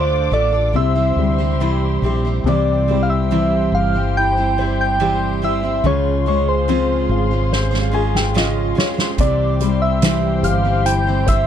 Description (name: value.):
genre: pop ballad.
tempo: 72 BPM.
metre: 4/4.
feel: straight.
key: unclear.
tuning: A4 = 441 Hz.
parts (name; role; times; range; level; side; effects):
soft struck synth lead; melody; 0.0-11.5 s; C5 to G5; -20 LUFS; equal; chorus.
warm baby grand piano; accompaniment; 0.0-11.5 s; C3 to Ab5; -22 LUFS; left 9 dB; none.
muted studio string section; sustained chords; 0.0-11.5 s; G4 to D6; -28 LUFS; left 4 dB; none.
picked steel-string acoustic guitar; arpeggios; 0.0-11.5 s; C3 to C5; -24 LUFS; right 9 dB; none.
mellow fretless electric bass; bass; 0.0-11.5 s; G1 to D2; -20 LUFS; equal; none.
soft-mallet drum kit; drums; 7.5-11.5 s; hi-hat, kick drum, snare drum; -19 LUFS; right 1 dB; none.
room: studio reverb.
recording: none.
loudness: -15 LUFS.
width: side -9 dB against mid.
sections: 0.0-2.5 A section; 2.5-11.5 B section.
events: drum fill 7.5-9.2; grand piano fill 7.5-9.2.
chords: 0.0 Dm; 0.8 C; 5.9 Dbmaj7; 9.2 C.